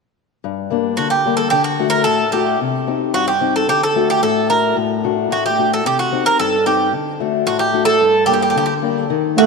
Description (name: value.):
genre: greek folk, Greek bouzouki band.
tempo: 111 BPM.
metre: 2/4.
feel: straight.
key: G harmonic minor.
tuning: A4 = 439 Hz.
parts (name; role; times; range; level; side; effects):
fingerpicked steel-string acoustic guitar; accompaniment; 0.4-9.5 s; G2 to G4; -18 LUFS; left 9 dB; none.
Greek bouzouki; melody; 1.0-9.5 s; F#4 to Bb4; -16 LUFS; right 4 dB; none.
mellow accordion; second line; 9.4-9.5 s; A3; -10 LUFS; right 16 dB; none.
room: wet plate reverb, RT60 3.0 s.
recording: 1960s-style stereo with parts hard left and right.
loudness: -14 LUFS.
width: side -4 dB against mid.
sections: 0.4-9.1 A section.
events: none.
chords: 0.4 Gm; 1.5 D; 2.6 Cm; 3.7 D; 5.8 Cm; 6.9 D; 8.0 Gm.